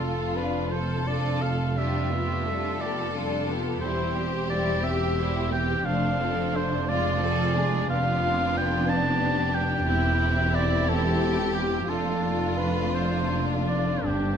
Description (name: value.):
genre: classical, slow romantic movement for symphony orchestra.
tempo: 50-62 BPM (dotted quarters).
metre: 6/8.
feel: rubato.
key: unclear.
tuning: A4 = 440 Hz.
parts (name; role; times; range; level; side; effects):
clear symphonic violin section; melody; 0.0-14.4 s; D4 to C5; -37 LUFS; left 4 dB; none.
warm cor anglais; second line; 0.0-14.4 s; G4 to A5; -29 LUFS; right 1 dB; none.
warm symphonic violin section; second line; 0.0-14.4 s; D4 to A4; -32 LUFS; left 4 dB; none.
rich symphonic viola section; accompaniment; 0.0-14.4 s; F3 to G4; -31 LUFS; left 1 dB; none.
clear symphonic double bass section; bass; 0.0-14.4 s; E1 to G1; -30 LUFS; right 2 dB; none.
warm symphonic cello section; bass; 0.0-14.4 s; E2 to G2; -30 LUFS; right 2 dB; none.
timpani; percussion; 14.1-14.4 s; G2; -31 LUFS; equal; none.
room: moderate recital hall reverb, RT60 1.5 s.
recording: none.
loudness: -23 LUFS.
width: side -8 dB against mid.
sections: 0.0-14.4 A section.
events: none.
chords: 0.0 Dm/F; 1.8 G7/F; 3.8 C/E; 5.9 Dm7/F; 6.9 Dm7b5/F; 7.9 G7/F; 9.9 C/E; 11.9 Dm/F.